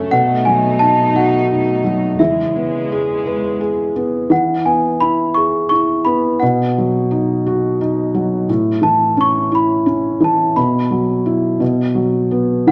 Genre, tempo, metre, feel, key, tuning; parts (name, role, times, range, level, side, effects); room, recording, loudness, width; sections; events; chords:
children's music, lullaby; 57 BPM (dotted quarters); 6/8; straight; E major; A4 = 440 Hz
felt-muted upright piano; accompaniment; 0.0-12.7 s; A2 to C#5; -18 LUFS; equal
dark studio string section; sustained chords; 0.0-4.3, 12.7 s; E2 to D#4; -24 LUFS; equal
celesta; melody; 0.1-12.7 s; E5 to C#6; -19 LUFS; equal
wet recital hall reverb, RT60 1.4 s; worn, warbling old tape, cassette tape, warbly pitch drift; -16 LUFS; mono
0.0-4.3 A section; 4.3-12.7 A section
0.1 B7; 2.2 E6; 4.3 E; 6.4 B; 8.5 A; 10.6 Bsus4; 11.6 B5